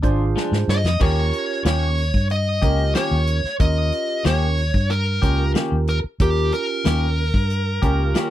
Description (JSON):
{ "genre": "straight-eighth soul blues", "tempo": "92 BPM", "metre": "4/4", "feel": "straight", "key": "Eb mixolydian", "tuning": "A4 = 440 Hz", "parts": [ { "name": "barky tine electric piano", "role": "accompaniment", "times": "0.0-8.3 s", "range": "Db4 to C5", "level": "-26 LUFS", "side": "right 7 dB", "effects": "phaser" }, { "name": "clean electric guitar", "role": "stabs", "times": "0.0-8.3 s", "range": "Eb3 to G4", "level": "-27 LUFS", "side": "left 8 dB", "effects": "none" }, { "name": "vintage muted fingered electric bass", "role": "bass", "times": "0.0-8.1 s", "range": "Ab1 to Ab2", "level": "-20 LUFS", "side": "equal", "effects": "none" }, { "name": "warm soul drum kit", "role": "drums", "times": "0.0-8.3 s", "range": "crash cymbal, hi-hat, kick drum, snare drum", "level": "-22 LUFS", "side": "equal", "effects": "none" }, { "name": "dark smooth lead guitar", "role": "melody", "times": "0.7-8.3 s", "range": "G4 to Eb5", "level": "-24 LUFS", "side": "left 1 dB", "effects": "overdrive" } ], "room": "little or no reverb", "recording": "none", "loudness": "-18 LUFS", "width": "side -13 dB against mid", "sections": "0.0-1.0 A section; 1.0-8.3 B section", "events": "lead electric guitar solo 0.0-1.0; drum fill 0.4-1.0", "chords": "0.0 Bb7 (rootless); 1.0 Eb7" }